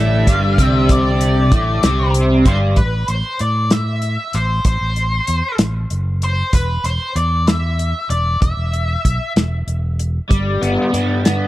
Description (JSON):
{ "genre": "psychedelic rock", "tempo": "64 BPM (dotted quarters)", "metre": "6/8", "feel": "straight", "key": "A minor", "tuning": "A4 = 440 Hz", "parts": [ { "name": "octave-fuzz lead guitar", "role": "melody", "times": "0.0-9.3 s", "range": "B4 to E5", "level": "-21 LUFS", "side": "left 1 dB", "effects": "wah, distortion, analog delay" }, { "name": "string machine, cellos", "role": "sustained chords", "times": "0.0-2.7, 10.3-11.5 s", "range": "D3 to B5", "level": "-27 LUFS", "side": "right 2 dB", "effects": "ensemble chorus" }, { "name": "crunchy overdriven guitar", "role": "riff", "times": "0.0-2.8, 10.3-11.5 s", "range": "G2 to C4", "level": "-16 LUFS", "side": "equal", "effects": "rotary speaker" }, { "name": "fingered electric bass", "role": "bass", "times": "0.0-11.5 s", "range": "E1 to A2", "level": "-19 LUFS", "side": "equal", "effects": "none" }, { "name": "damped 70s drum kit", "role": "drums", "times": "0.3-11.4 s", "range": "hi-hat, kick drum, snare drum", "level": "-16 LUFS", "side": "equal", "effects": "none" } ], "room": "little or no reverb", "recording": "none", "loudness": "-14 LUFS", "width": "side -16 dB against mid", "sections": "0.0-2.8 A section; 2.8-11.5 B section", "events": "none", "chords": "0.0 G5; 2.8 Am; 6.5 E5; 10.3 Gadd9" }